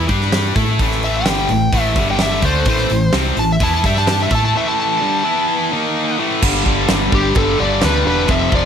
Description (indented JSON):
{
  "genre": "hard rock",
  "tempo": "128 BPM",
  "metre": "4/4",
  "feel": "straight",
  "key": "unclear",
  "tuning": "A4 = 438 Hz",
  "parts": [
    { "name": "smooth overdriven lead guitar", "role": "melody", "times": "0.0-8.7 s", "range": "G4 to A5", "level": "-20 LUFS", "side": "equal", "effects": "plate reverb" },
    { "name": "tight distorted guitar", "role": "riff", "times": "0.0-8.7 s", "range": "F2 to A4", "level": "-17 LUFS", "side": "left 1 dB", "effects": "distortion" },
    { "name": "hollow-body short-scale fingered electric bass", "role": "bass", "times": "0.0-8.7 s", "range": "E1 to A2", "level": "-20 LUFS", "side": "equal", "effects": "none" },
    { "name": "big rock drum kit", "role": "drums", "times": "0.1-8.6 s", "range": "crash cymbal, hi-hat, kick drum, snare drum", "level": "-20 LUFS", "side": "right 1 dB", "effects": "none" }
  ],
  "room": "light reverb",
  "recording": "none",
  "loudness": "-14 LUFS",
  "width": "side -8 dB against mid",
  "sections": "0.0-6.4 A section; 6.4-8.7 B section",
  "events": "lead electric guitar solo 0.0-6.4; break 4.5-6.4",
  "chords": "0.1 G5; 0.6 A5; 2.0 G5; 2.4 Am; 3.8 G5; 4.3 A5; 5.2 E5; 5.7 D#5; 6.2 A5; 6.4 G5",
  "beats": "0.33 | 0.80 1.27 1.74 2.20 | 2.67 3.14 3.61 4.08 | 4.55 5.02 5.48 5.95 | 6.42 6.89 7.36 7.83 | 8.29"
}